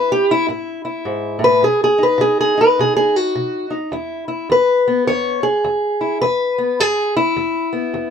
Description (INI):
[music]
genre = acoustic country blues, solo or duo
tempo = 105 BPM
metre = 4/4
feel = swing 61% on 8ths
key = E major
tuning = A4 = 439 Hz
[part]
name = fingerpicked steel-string acoustic guitar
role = solo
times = 0.0-8.1 s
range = E2 to C#5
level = -15 LUFS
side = left 1 dB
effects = none
[sound]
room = light reverb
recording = close, detailed microphones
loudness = -15 LUFS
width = side -7 dB against mid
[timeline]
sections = 0.0-3.9 A section; 3.9-8.1 A section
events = steel-string acoustic guitar solo 0.0-3.9, 3.9-8.1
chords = 0.5 A5; 1.6 B; 3.9 E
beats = 0.49 1.07 | 1.64 2.21 2.79 3.36 | 3.93 4.50 5.07 5.64 | 6.21 6.79 7.36 7.93